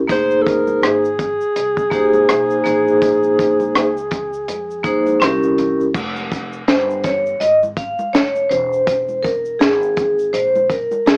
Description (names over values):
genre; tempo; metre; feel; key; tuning
hip hop, jazz-hop; 82 BPM; 4/4; swing 58% on 16ths; F minor; A4 = 439 Hz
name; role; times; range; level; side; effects
upright bass; bass; 0.0-11.2 s; E1 to F2; -35 LUFS; equal; none
breathy alto saxophone; melody; 0.1-5.2 s; Ab4 to C5; -21 LUFS; equal; cassette tape
vibraphone with hard mallets; accompaniment; 0.1-11.2 s; Bb3 to F5; -18 LUFS; equal; cassette tape
crunchy breakbeat drum kit; drums; 0.1-11.2 s; crash cymbal, hi-hat, kick drum, rim click, snare drum; -21 LUFS; equal; vintage 12-bit sampler grit, cassette tape
tube shaker and congas; percussion; 0.1-11.2 s; none; -38 LUFS; equal; none
room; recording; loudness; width
light reverb; home recording on cassette, small speaker sound; -17 LUFS; mono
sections
0.0-5.9 A section; 5.9-11.2 B section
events
vibraphone solo 5.9-11.2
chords
0.1 Fm7; 2.7 Bbm9; 5.2 C7b9; 5.9 Fmadd9; 8.5 C7b13/E